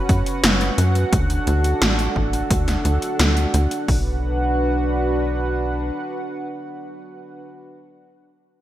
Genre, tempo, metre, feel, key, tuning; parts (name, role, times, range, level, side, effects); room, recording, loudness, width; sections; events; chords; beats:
synthwave; 87 BPM; 4/4; straight; B minor; A4 = 440 Hz
chorused pulse-width pad; sustained chords; 0.0-7.4 s; C#4 to F#5; -24 LUFS; right 1 dB; sidechain pumping
tight sequencer bass; bass; 0.1-5.9 s; F#1 to F#2; -21 LUFS; equal; sidechain pumping
80s electronic pad drums; drums; 0.1-4.0 s; hi-hat, kick drum; -22 LUFS; equal; overdrive, small room ambience
80s electronic pad drums; drums; 0.1-3.9 s; hi-hat, snare drum; -22 LUFS; equal; overdrive, small room ambience, gated reverb
moderate lush hall reverb, RT60 2.3 s; bright 1980s-style digital production; -18 LUFS; side -13 dB against mid
0.0-3.9 A section; 3.9-6.6 B section
0.0 F#sus4; 1.1 D; 3.9 Bm
0.44 | 1.12 1.81 2.50 3.19 | 3.88 4.57 5.26 5.95